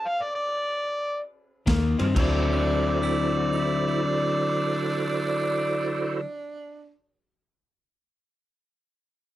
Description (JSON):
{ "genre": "electric blues shuffle", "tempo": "119-142 BPM", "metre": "4/4", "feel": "swing 66% on 8ths", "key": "D mixolydian", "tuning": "A4 = 440 Hz", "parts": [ { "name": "overdriven harmonica", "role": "melody", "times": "0.0-6.2 s", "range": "D5 to F5", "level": "-28 LUFS", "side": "equal", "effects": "none" }, { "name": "electric guitar at the edge of break-up", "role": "riff", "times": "1.7-6.3 s", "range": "D3 to E4", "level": "-27 LUFS", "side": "left 4 dB", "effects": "spring reverb" }, { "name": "vintage muted fingered electric bass", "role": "bass", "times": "1.7-6.2 s", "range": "D2 to G2", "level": "-28 LUFS", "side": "equal", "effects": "none" }, { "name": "raw garage drum kit", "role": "drums", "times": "1.7-2.3 s", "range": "crash cymbal, kick drum, ride cymbal, snare drum", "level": "-29 LUFS", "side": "equal", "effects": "none" }, { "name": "bright tonewheel organ", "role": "accompaniment", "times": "2.0-6.2 s", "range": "E4 to Db5", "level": "-29 LUFS", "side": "right 4 dB", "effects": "slow rotary speaker, overdrive, chorus vibrato" }, { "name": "growling tenor saxophone", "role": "second line", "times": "2.5-7.0 s", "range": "D4 to F#4", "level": "-31 LUFS", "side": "right 3 dB", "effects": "none" } ], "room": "moderate club reverb, RT60 0.5 s", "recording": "none", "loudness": "-23 LUFS", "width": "side -14 dB against mid", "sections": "0.0-2.2 A section; 2.2-6.2 B section", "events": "slowing down 0.0-2.2; stop 0.0-1.7", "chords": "0.0 D5; 1.7 Eb9; 2.2 D9" }